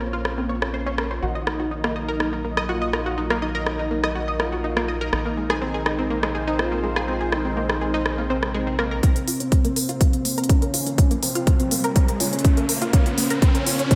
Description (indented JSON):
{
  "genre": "melodic techno",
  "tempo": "123 BPM",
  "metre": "4/4",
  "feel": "straight",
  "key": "Bb minor",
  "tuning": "A4 = 440 Hz",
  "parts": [
    { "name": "lush unison pad", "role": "sustained chords", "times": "0.0-14.0 s", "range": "Gb3 to F5", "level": "-34 LUFS", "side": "equal", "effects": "chorus, phaser, sidechain pumping" },
    { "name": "analog pluck", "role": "arpeggios", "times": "0.0-14.0 s", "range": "Ab3 to Eb5", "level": "-30 LUFS", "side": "equal", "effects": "subtle chorus, vintage 12-bit sampler grit, sidechain pumping, delay" },
    { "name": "round analog bass", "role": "bass", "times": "0.0-9.0 s", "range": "Bb1", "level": "-33 LUFS", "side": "equal", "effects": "sidechain pumping" },
    { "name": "house drum kit", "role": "drums", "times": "0.3-14.0 s", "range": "hi-hat, rim click", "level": "-28 LUFS", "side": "equal", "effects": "studio reverb, gated reverb" },
    { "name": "unison lead", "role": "melody", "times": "1.2-14.0 s", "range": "C4 to F4", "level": "-30 LUFS", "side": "equal", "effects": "sidechain pumping, delay" },
    { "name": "electronic kick drum", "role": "drums", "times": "9.0-14.0 s", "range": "none", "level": "-20 LUFS", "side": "equal", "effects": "studio reverb" },
    { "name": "riser", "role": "sound effects", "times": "10.8-14.0 s", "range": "none", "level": "-32 LUFS", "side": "equal", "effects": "none" }
  ],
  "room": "moderate lush hall reverb, RT60 2.2 s",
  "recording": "bright 1980s-style digital production",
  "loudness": "-22 LUFS",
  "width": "mono",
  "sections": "0.0-9.0 A section; 9.0-14.0 B section",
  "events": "filter sweep on analog synth pad 0.0-9.0; build-up 9.0-14.0; filter sweep on analog synth lead 9.0-14.0; riser 10.8-14.0",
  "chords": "0.0 Bbmadd9; 1.2 Ebm/Bb; 5.1 Abadd9/Bb; 9.0 Bbmadd9",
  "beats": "0.25 0.74 | 1.23 1.72 2.20 2.69 | 3.18 3.67 4.15 4.64 | 5.13 5.62 6.11 6.59 | 7.08 7.57 8.06 8.54 | 9.03 9.52 10.01 10.49 | 10.98 11.47 11.96 12.45 | 12.93 13.42 13.91"
}